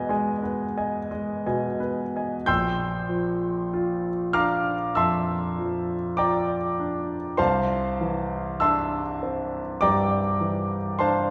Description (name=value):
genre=classical, impressionist solo piano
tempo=43-52 BPM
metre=4/4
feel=rubato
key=Bb lydian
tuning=A4 = 440 Hz
part: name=clear concert grand piano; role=solo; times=0.0-11.3 s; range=Bb1 to G6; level=-26 LUFS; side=equal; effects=none
room=wet scoring stage reverb, RT60 1.7 s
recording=heard from further back in the room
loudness=-26 LUFS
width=mono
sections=0.0-2.5 A section; 2.5-11.3 B section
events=none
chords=0.0 Emaj7; 2.5 Bb6; 7.4 Cadd9